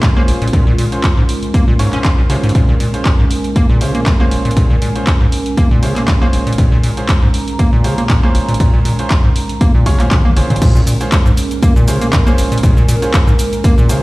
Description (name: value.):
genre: acid house.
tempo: 119 BPM.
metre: 4/4.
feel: swing 54% on 16ths.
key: Bb minor.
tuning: A4 = 442 Hz.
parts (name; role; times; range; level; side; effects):
dark analog pad; sustained chords; 0.0-14.0 s; Ab3 to Bb4; -22 LUFS; equal; chorus, sidechain pumping.
acid bass, square; riff; 0.0-14.0 s; Bb1 to Db4; -16 LUFS; equal; overdrive, sidechain pumping, digital delay.
electronic kick drum; drums; 0.0-13.8 s; none; -12 LUFS; equal; none.
punchy analog drum machine; drums; 0.0-14.0 s; crash cymbal, handclaps, hi-hat, shaker, toms; -22 LUFS; equal; none.
warbly tape-like pad; texture; 0.0-14.0 s; Db4 to C6; -25 LUFS; right 3 dB; chorus, built-in reverb, sidechain pumping.
bright grand piano; stabs; 0.2-14.0 s; Db4 to Db5; -24 LUFS; right 2 dB; digital delay.
room: light reverb.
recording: played on a big sound system in a bare room, stone room reverb.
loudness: -10 LUFS.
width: side -20 dB against mid.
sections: 0.0-10.6 A section; 10.6-14.0 B section.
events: drum fill 9.9-10.6; drop 10.6-14.0.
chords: 0.0 Bbm7.